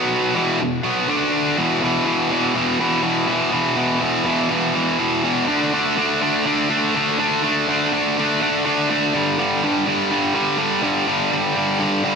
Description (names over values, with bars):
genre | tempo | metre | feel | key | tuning
rock | 123 BPM | 4/4 | straight | E minor | A4 = 440 Hz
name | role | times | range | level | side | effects
tight distorted guitar | solo | 0.0-12.2 s | E2 to D4 | -17 LUFS | equal | distortion
room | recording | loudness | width
wet plate reverb, RT60 2.8 s | bright 1980s-style digital production | -17 LUFS | side -5 dB against mid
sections
0.0-1.6 A section; 1.6-12.2 B section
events
none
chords
0.3 E5; 1.1 D5; 1.6 E5; 5.5 D5; 9.1 G5